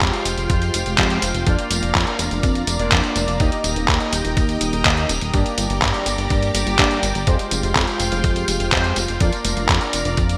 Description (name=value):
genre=italo disco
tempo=124 BPM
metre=4/4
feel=straight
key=F dorian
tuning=A4 = 440 Hz
part: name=string machine, full ensemble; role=sustained chords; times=0.0-10.4 s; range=G3 to D6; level=-29 LUFS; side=equal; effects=ensemble chorus
part: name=analog synth brass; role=stabs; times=0.0-10.4 s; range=Ab3 to Eb5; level=-27 LUFS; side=equal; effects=chorus, delay
part: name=chorused synth bass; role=bass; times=0.0-10.4 s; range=Eb1 to G2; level=-26 LUFS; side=equal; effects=none
part: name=detuned 8-bit digital drum machine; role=drums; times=0.0-10.4 s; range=handclaps, hi-hat, tambourine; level=-24 LUFS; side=equal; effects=gated reverb
part: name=electronic kick drum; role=drums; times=0.0-10.3 s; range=none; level=-23 LUFS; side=equal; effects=none
room=moderate lush hall reverb, RT60 1.8 s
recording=bright 1980s-style digital production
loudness=-19 LUFS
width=mono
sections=0.0-10.4 A section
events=none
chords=0.0 Fmadd9; 1.5 Bb/F; 3.4 Eb; 5.3 Gm; 7.3 Fmadd9; 9.2 Bb/F